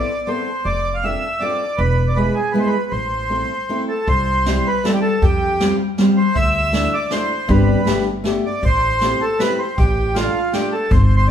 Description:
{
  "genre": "musette waltz",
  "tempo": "158 BPM",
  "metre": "3/4",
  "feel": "straight",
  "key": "A harmonic minor, C major from 4.1 s",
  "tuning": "A4 = 440 Hz",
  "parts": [
    { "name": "accordion", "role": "melody", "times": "0.0-11.3 s", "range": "F4 to F5", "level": "-20 LUFS", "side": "right 1 dB", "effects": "none" },
    { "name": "fingerpicked steel-string acoustic guitar", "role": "accompaniment", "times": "0.0-11.3 s", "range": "G3 to A4", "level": "-20 LUFS", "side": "left 1 dB", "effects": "none" },
    { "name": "upright bass", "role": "bass", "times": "0.7-11.3 s", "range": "E1 to F2", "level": "-20 LUFS", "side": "equal", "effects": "none" },
    { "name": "jazz brush drum kit", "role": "drums", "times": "4.1-11.0 s", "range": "hi-hat, kick drum, snare drum", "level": "-22 LUFS", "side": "equal", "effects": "none" }
  ],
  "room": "wet large studio reverb, RT60 1.1 s",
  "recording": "band playing live in one room",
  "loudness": "-16 LUFS",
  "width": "side -9 dB against mid",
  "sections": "0.0-4.1 A section; 4.1-11.3 B section",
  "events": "none",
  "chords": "0.0 Amadd9; 0.7 F6; 1.8 E; 2.9 Am; 4.1 C; 5.2 Fsus2; 6.4 Dadd9; 7.5 Gsus4; 7.9 Gadd9; 8.6 Am7; 9.8 Dm/A"
}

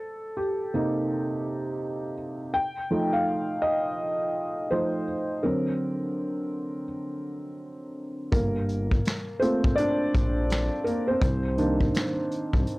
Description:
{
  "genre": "lo-fi hip hop",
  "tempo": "83 BPM",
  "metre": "4/4",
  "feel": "swing 65% on 16ths",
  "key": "G minor",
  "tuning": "A4 = 439 Hz",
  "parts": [
    { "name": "felt-muted upright piano", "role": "accompaniment", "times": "0.0-12.8 s", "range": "C3 to G5", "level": "-26 LUFS", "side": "equal", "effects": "cassette tape, low-pass filter" },
    { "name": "smooth gliding synth bass", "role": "bass", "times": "8.3-12.7 s", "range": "G1 to C2", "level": "-28 LUFS", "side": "equal", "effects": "none" },
    { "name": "vintage brush drum kit", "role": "drums", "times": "8.3-12.8 s", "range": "finger snaps, hi-hat, kick drum, snare drum", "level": "-27 LUFS", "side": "equal", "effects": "none" }
  ],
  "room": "light reverb",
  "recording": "dry, gritty hardware recording",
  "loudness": "-24 LUFS",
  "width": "side -21 dB against mid",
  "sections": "0.0-8.3 A section; 8.3-12.8 B section",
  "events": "felt piano solo 0.0-8.3, 8.3-12.8",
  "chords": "0.0 Cm7; 2.5 F7; 5.4 D7b13; 8.3 Gm7; 11.2 Cm9"
}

